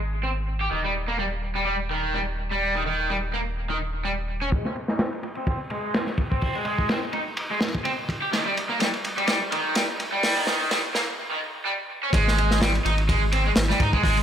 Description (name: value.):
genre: breakbeat, breaks.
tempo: 126 BPM.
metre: 4/4.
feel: swing 55% on 16ths.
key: Eb major.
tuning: A4 = 441 Hz.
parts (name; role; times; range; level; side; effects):
saturated sub bass; bass; 0.0-4.5, 12.1-14.2 s; Eb1 to Ab2; -27 LUFS; equal; tube saturation.
cranked stack guitar; riff; 0.2-14.2 s; Eb3 to G4; -25 LUFS; right 1 dB; overdrive, low-pass filter, analog delay.
crunchy breakbeat drum kit; drums; 4.5-14.2 s; hi-hat, kick drum, ride cymbal, snare drum; -25 LUFS; equal; low-pass filter on kick, low-pass filter on cymbals, low-pass filter on hats, low-pass filter on snare, low-pass filter on room, analog delay.
room: moderate plate reverb, RT60 1.7 s, small room ambience.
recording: echo-heavy mix, high-pass filter.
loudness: -22 LUFS.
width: side -9 dB against mid.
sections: 0.0-4.5 A section; 4.5-12.1 B section; 12.1-14.2 C section.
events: build-up 4.5-12.1; filter sweep on drum 4.5-12.1; filter sweep on overdriven electric guitar 4.5-12.1; filter sweep 4.5-12.1; drum fill 8.3-11.2; break 11.2-12.1; drop 12.1-14.2.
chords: 0.0 N.C.; 0.7 Eb; 4.5 Ab; 8.3 Eb; 12.1 N.C..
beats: 0.23 | 0.71 1.19 1.66 2.14 | 2.61 3.09 3.57 4.04 | 4.52 5.00 5.47 5.95 | 6.42 6.90 7.38 7.85 | 8.33 8.80 9.28 9.76 | 10.23 10.71 11.19 11.66 | 12.14 12.61 13.09 13.57 | 14.04.